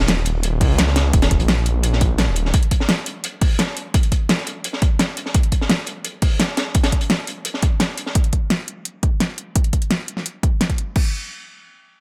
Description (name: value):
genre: liquid drum and bass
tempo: 171 BPM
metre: 4/4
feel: straight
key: unclear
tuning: A4 = 440 Hz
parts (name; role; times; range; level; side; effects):
- swelling detuned saw bass; bass; 0.0-2.5 s; Eb1 to Db2; -21 LUFS; equal; none
- crunchy breakbeat drum kit; drums; 0.0-8.1 s; hi-hat, snare drum; -27 LUFS; equal; high-pass filter on hats, high-pass filter on snare, high-pass filter on room
- pop drum kit; drums; 0.1-11.0 s; crash cymbal, hi-hat, snare drum; -24 LUFS; equal; overdrive
- electronic kick drum; drums; 0.6-11.0 s; none; -20 LUFS; equal; overdrive
room: little or no reverb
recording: none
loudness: -20 LUFS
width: mono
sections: 0.0-11.0 A section; 11.0-12.0 B section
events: none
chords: none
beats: 0.08 0.43 0.78 | 1.14 1.49 1.84 2.19 | 2.54 2.89 3.24 3.59 | 3.94 4.29 4.64 5.00 | 5.34 5.70 6.05 6.40 | 6.75 7.10 7.45 7.80 | 8.15 8.50 8.85 9.21 | 9.56 9.91 10.26 10.61 | 10.96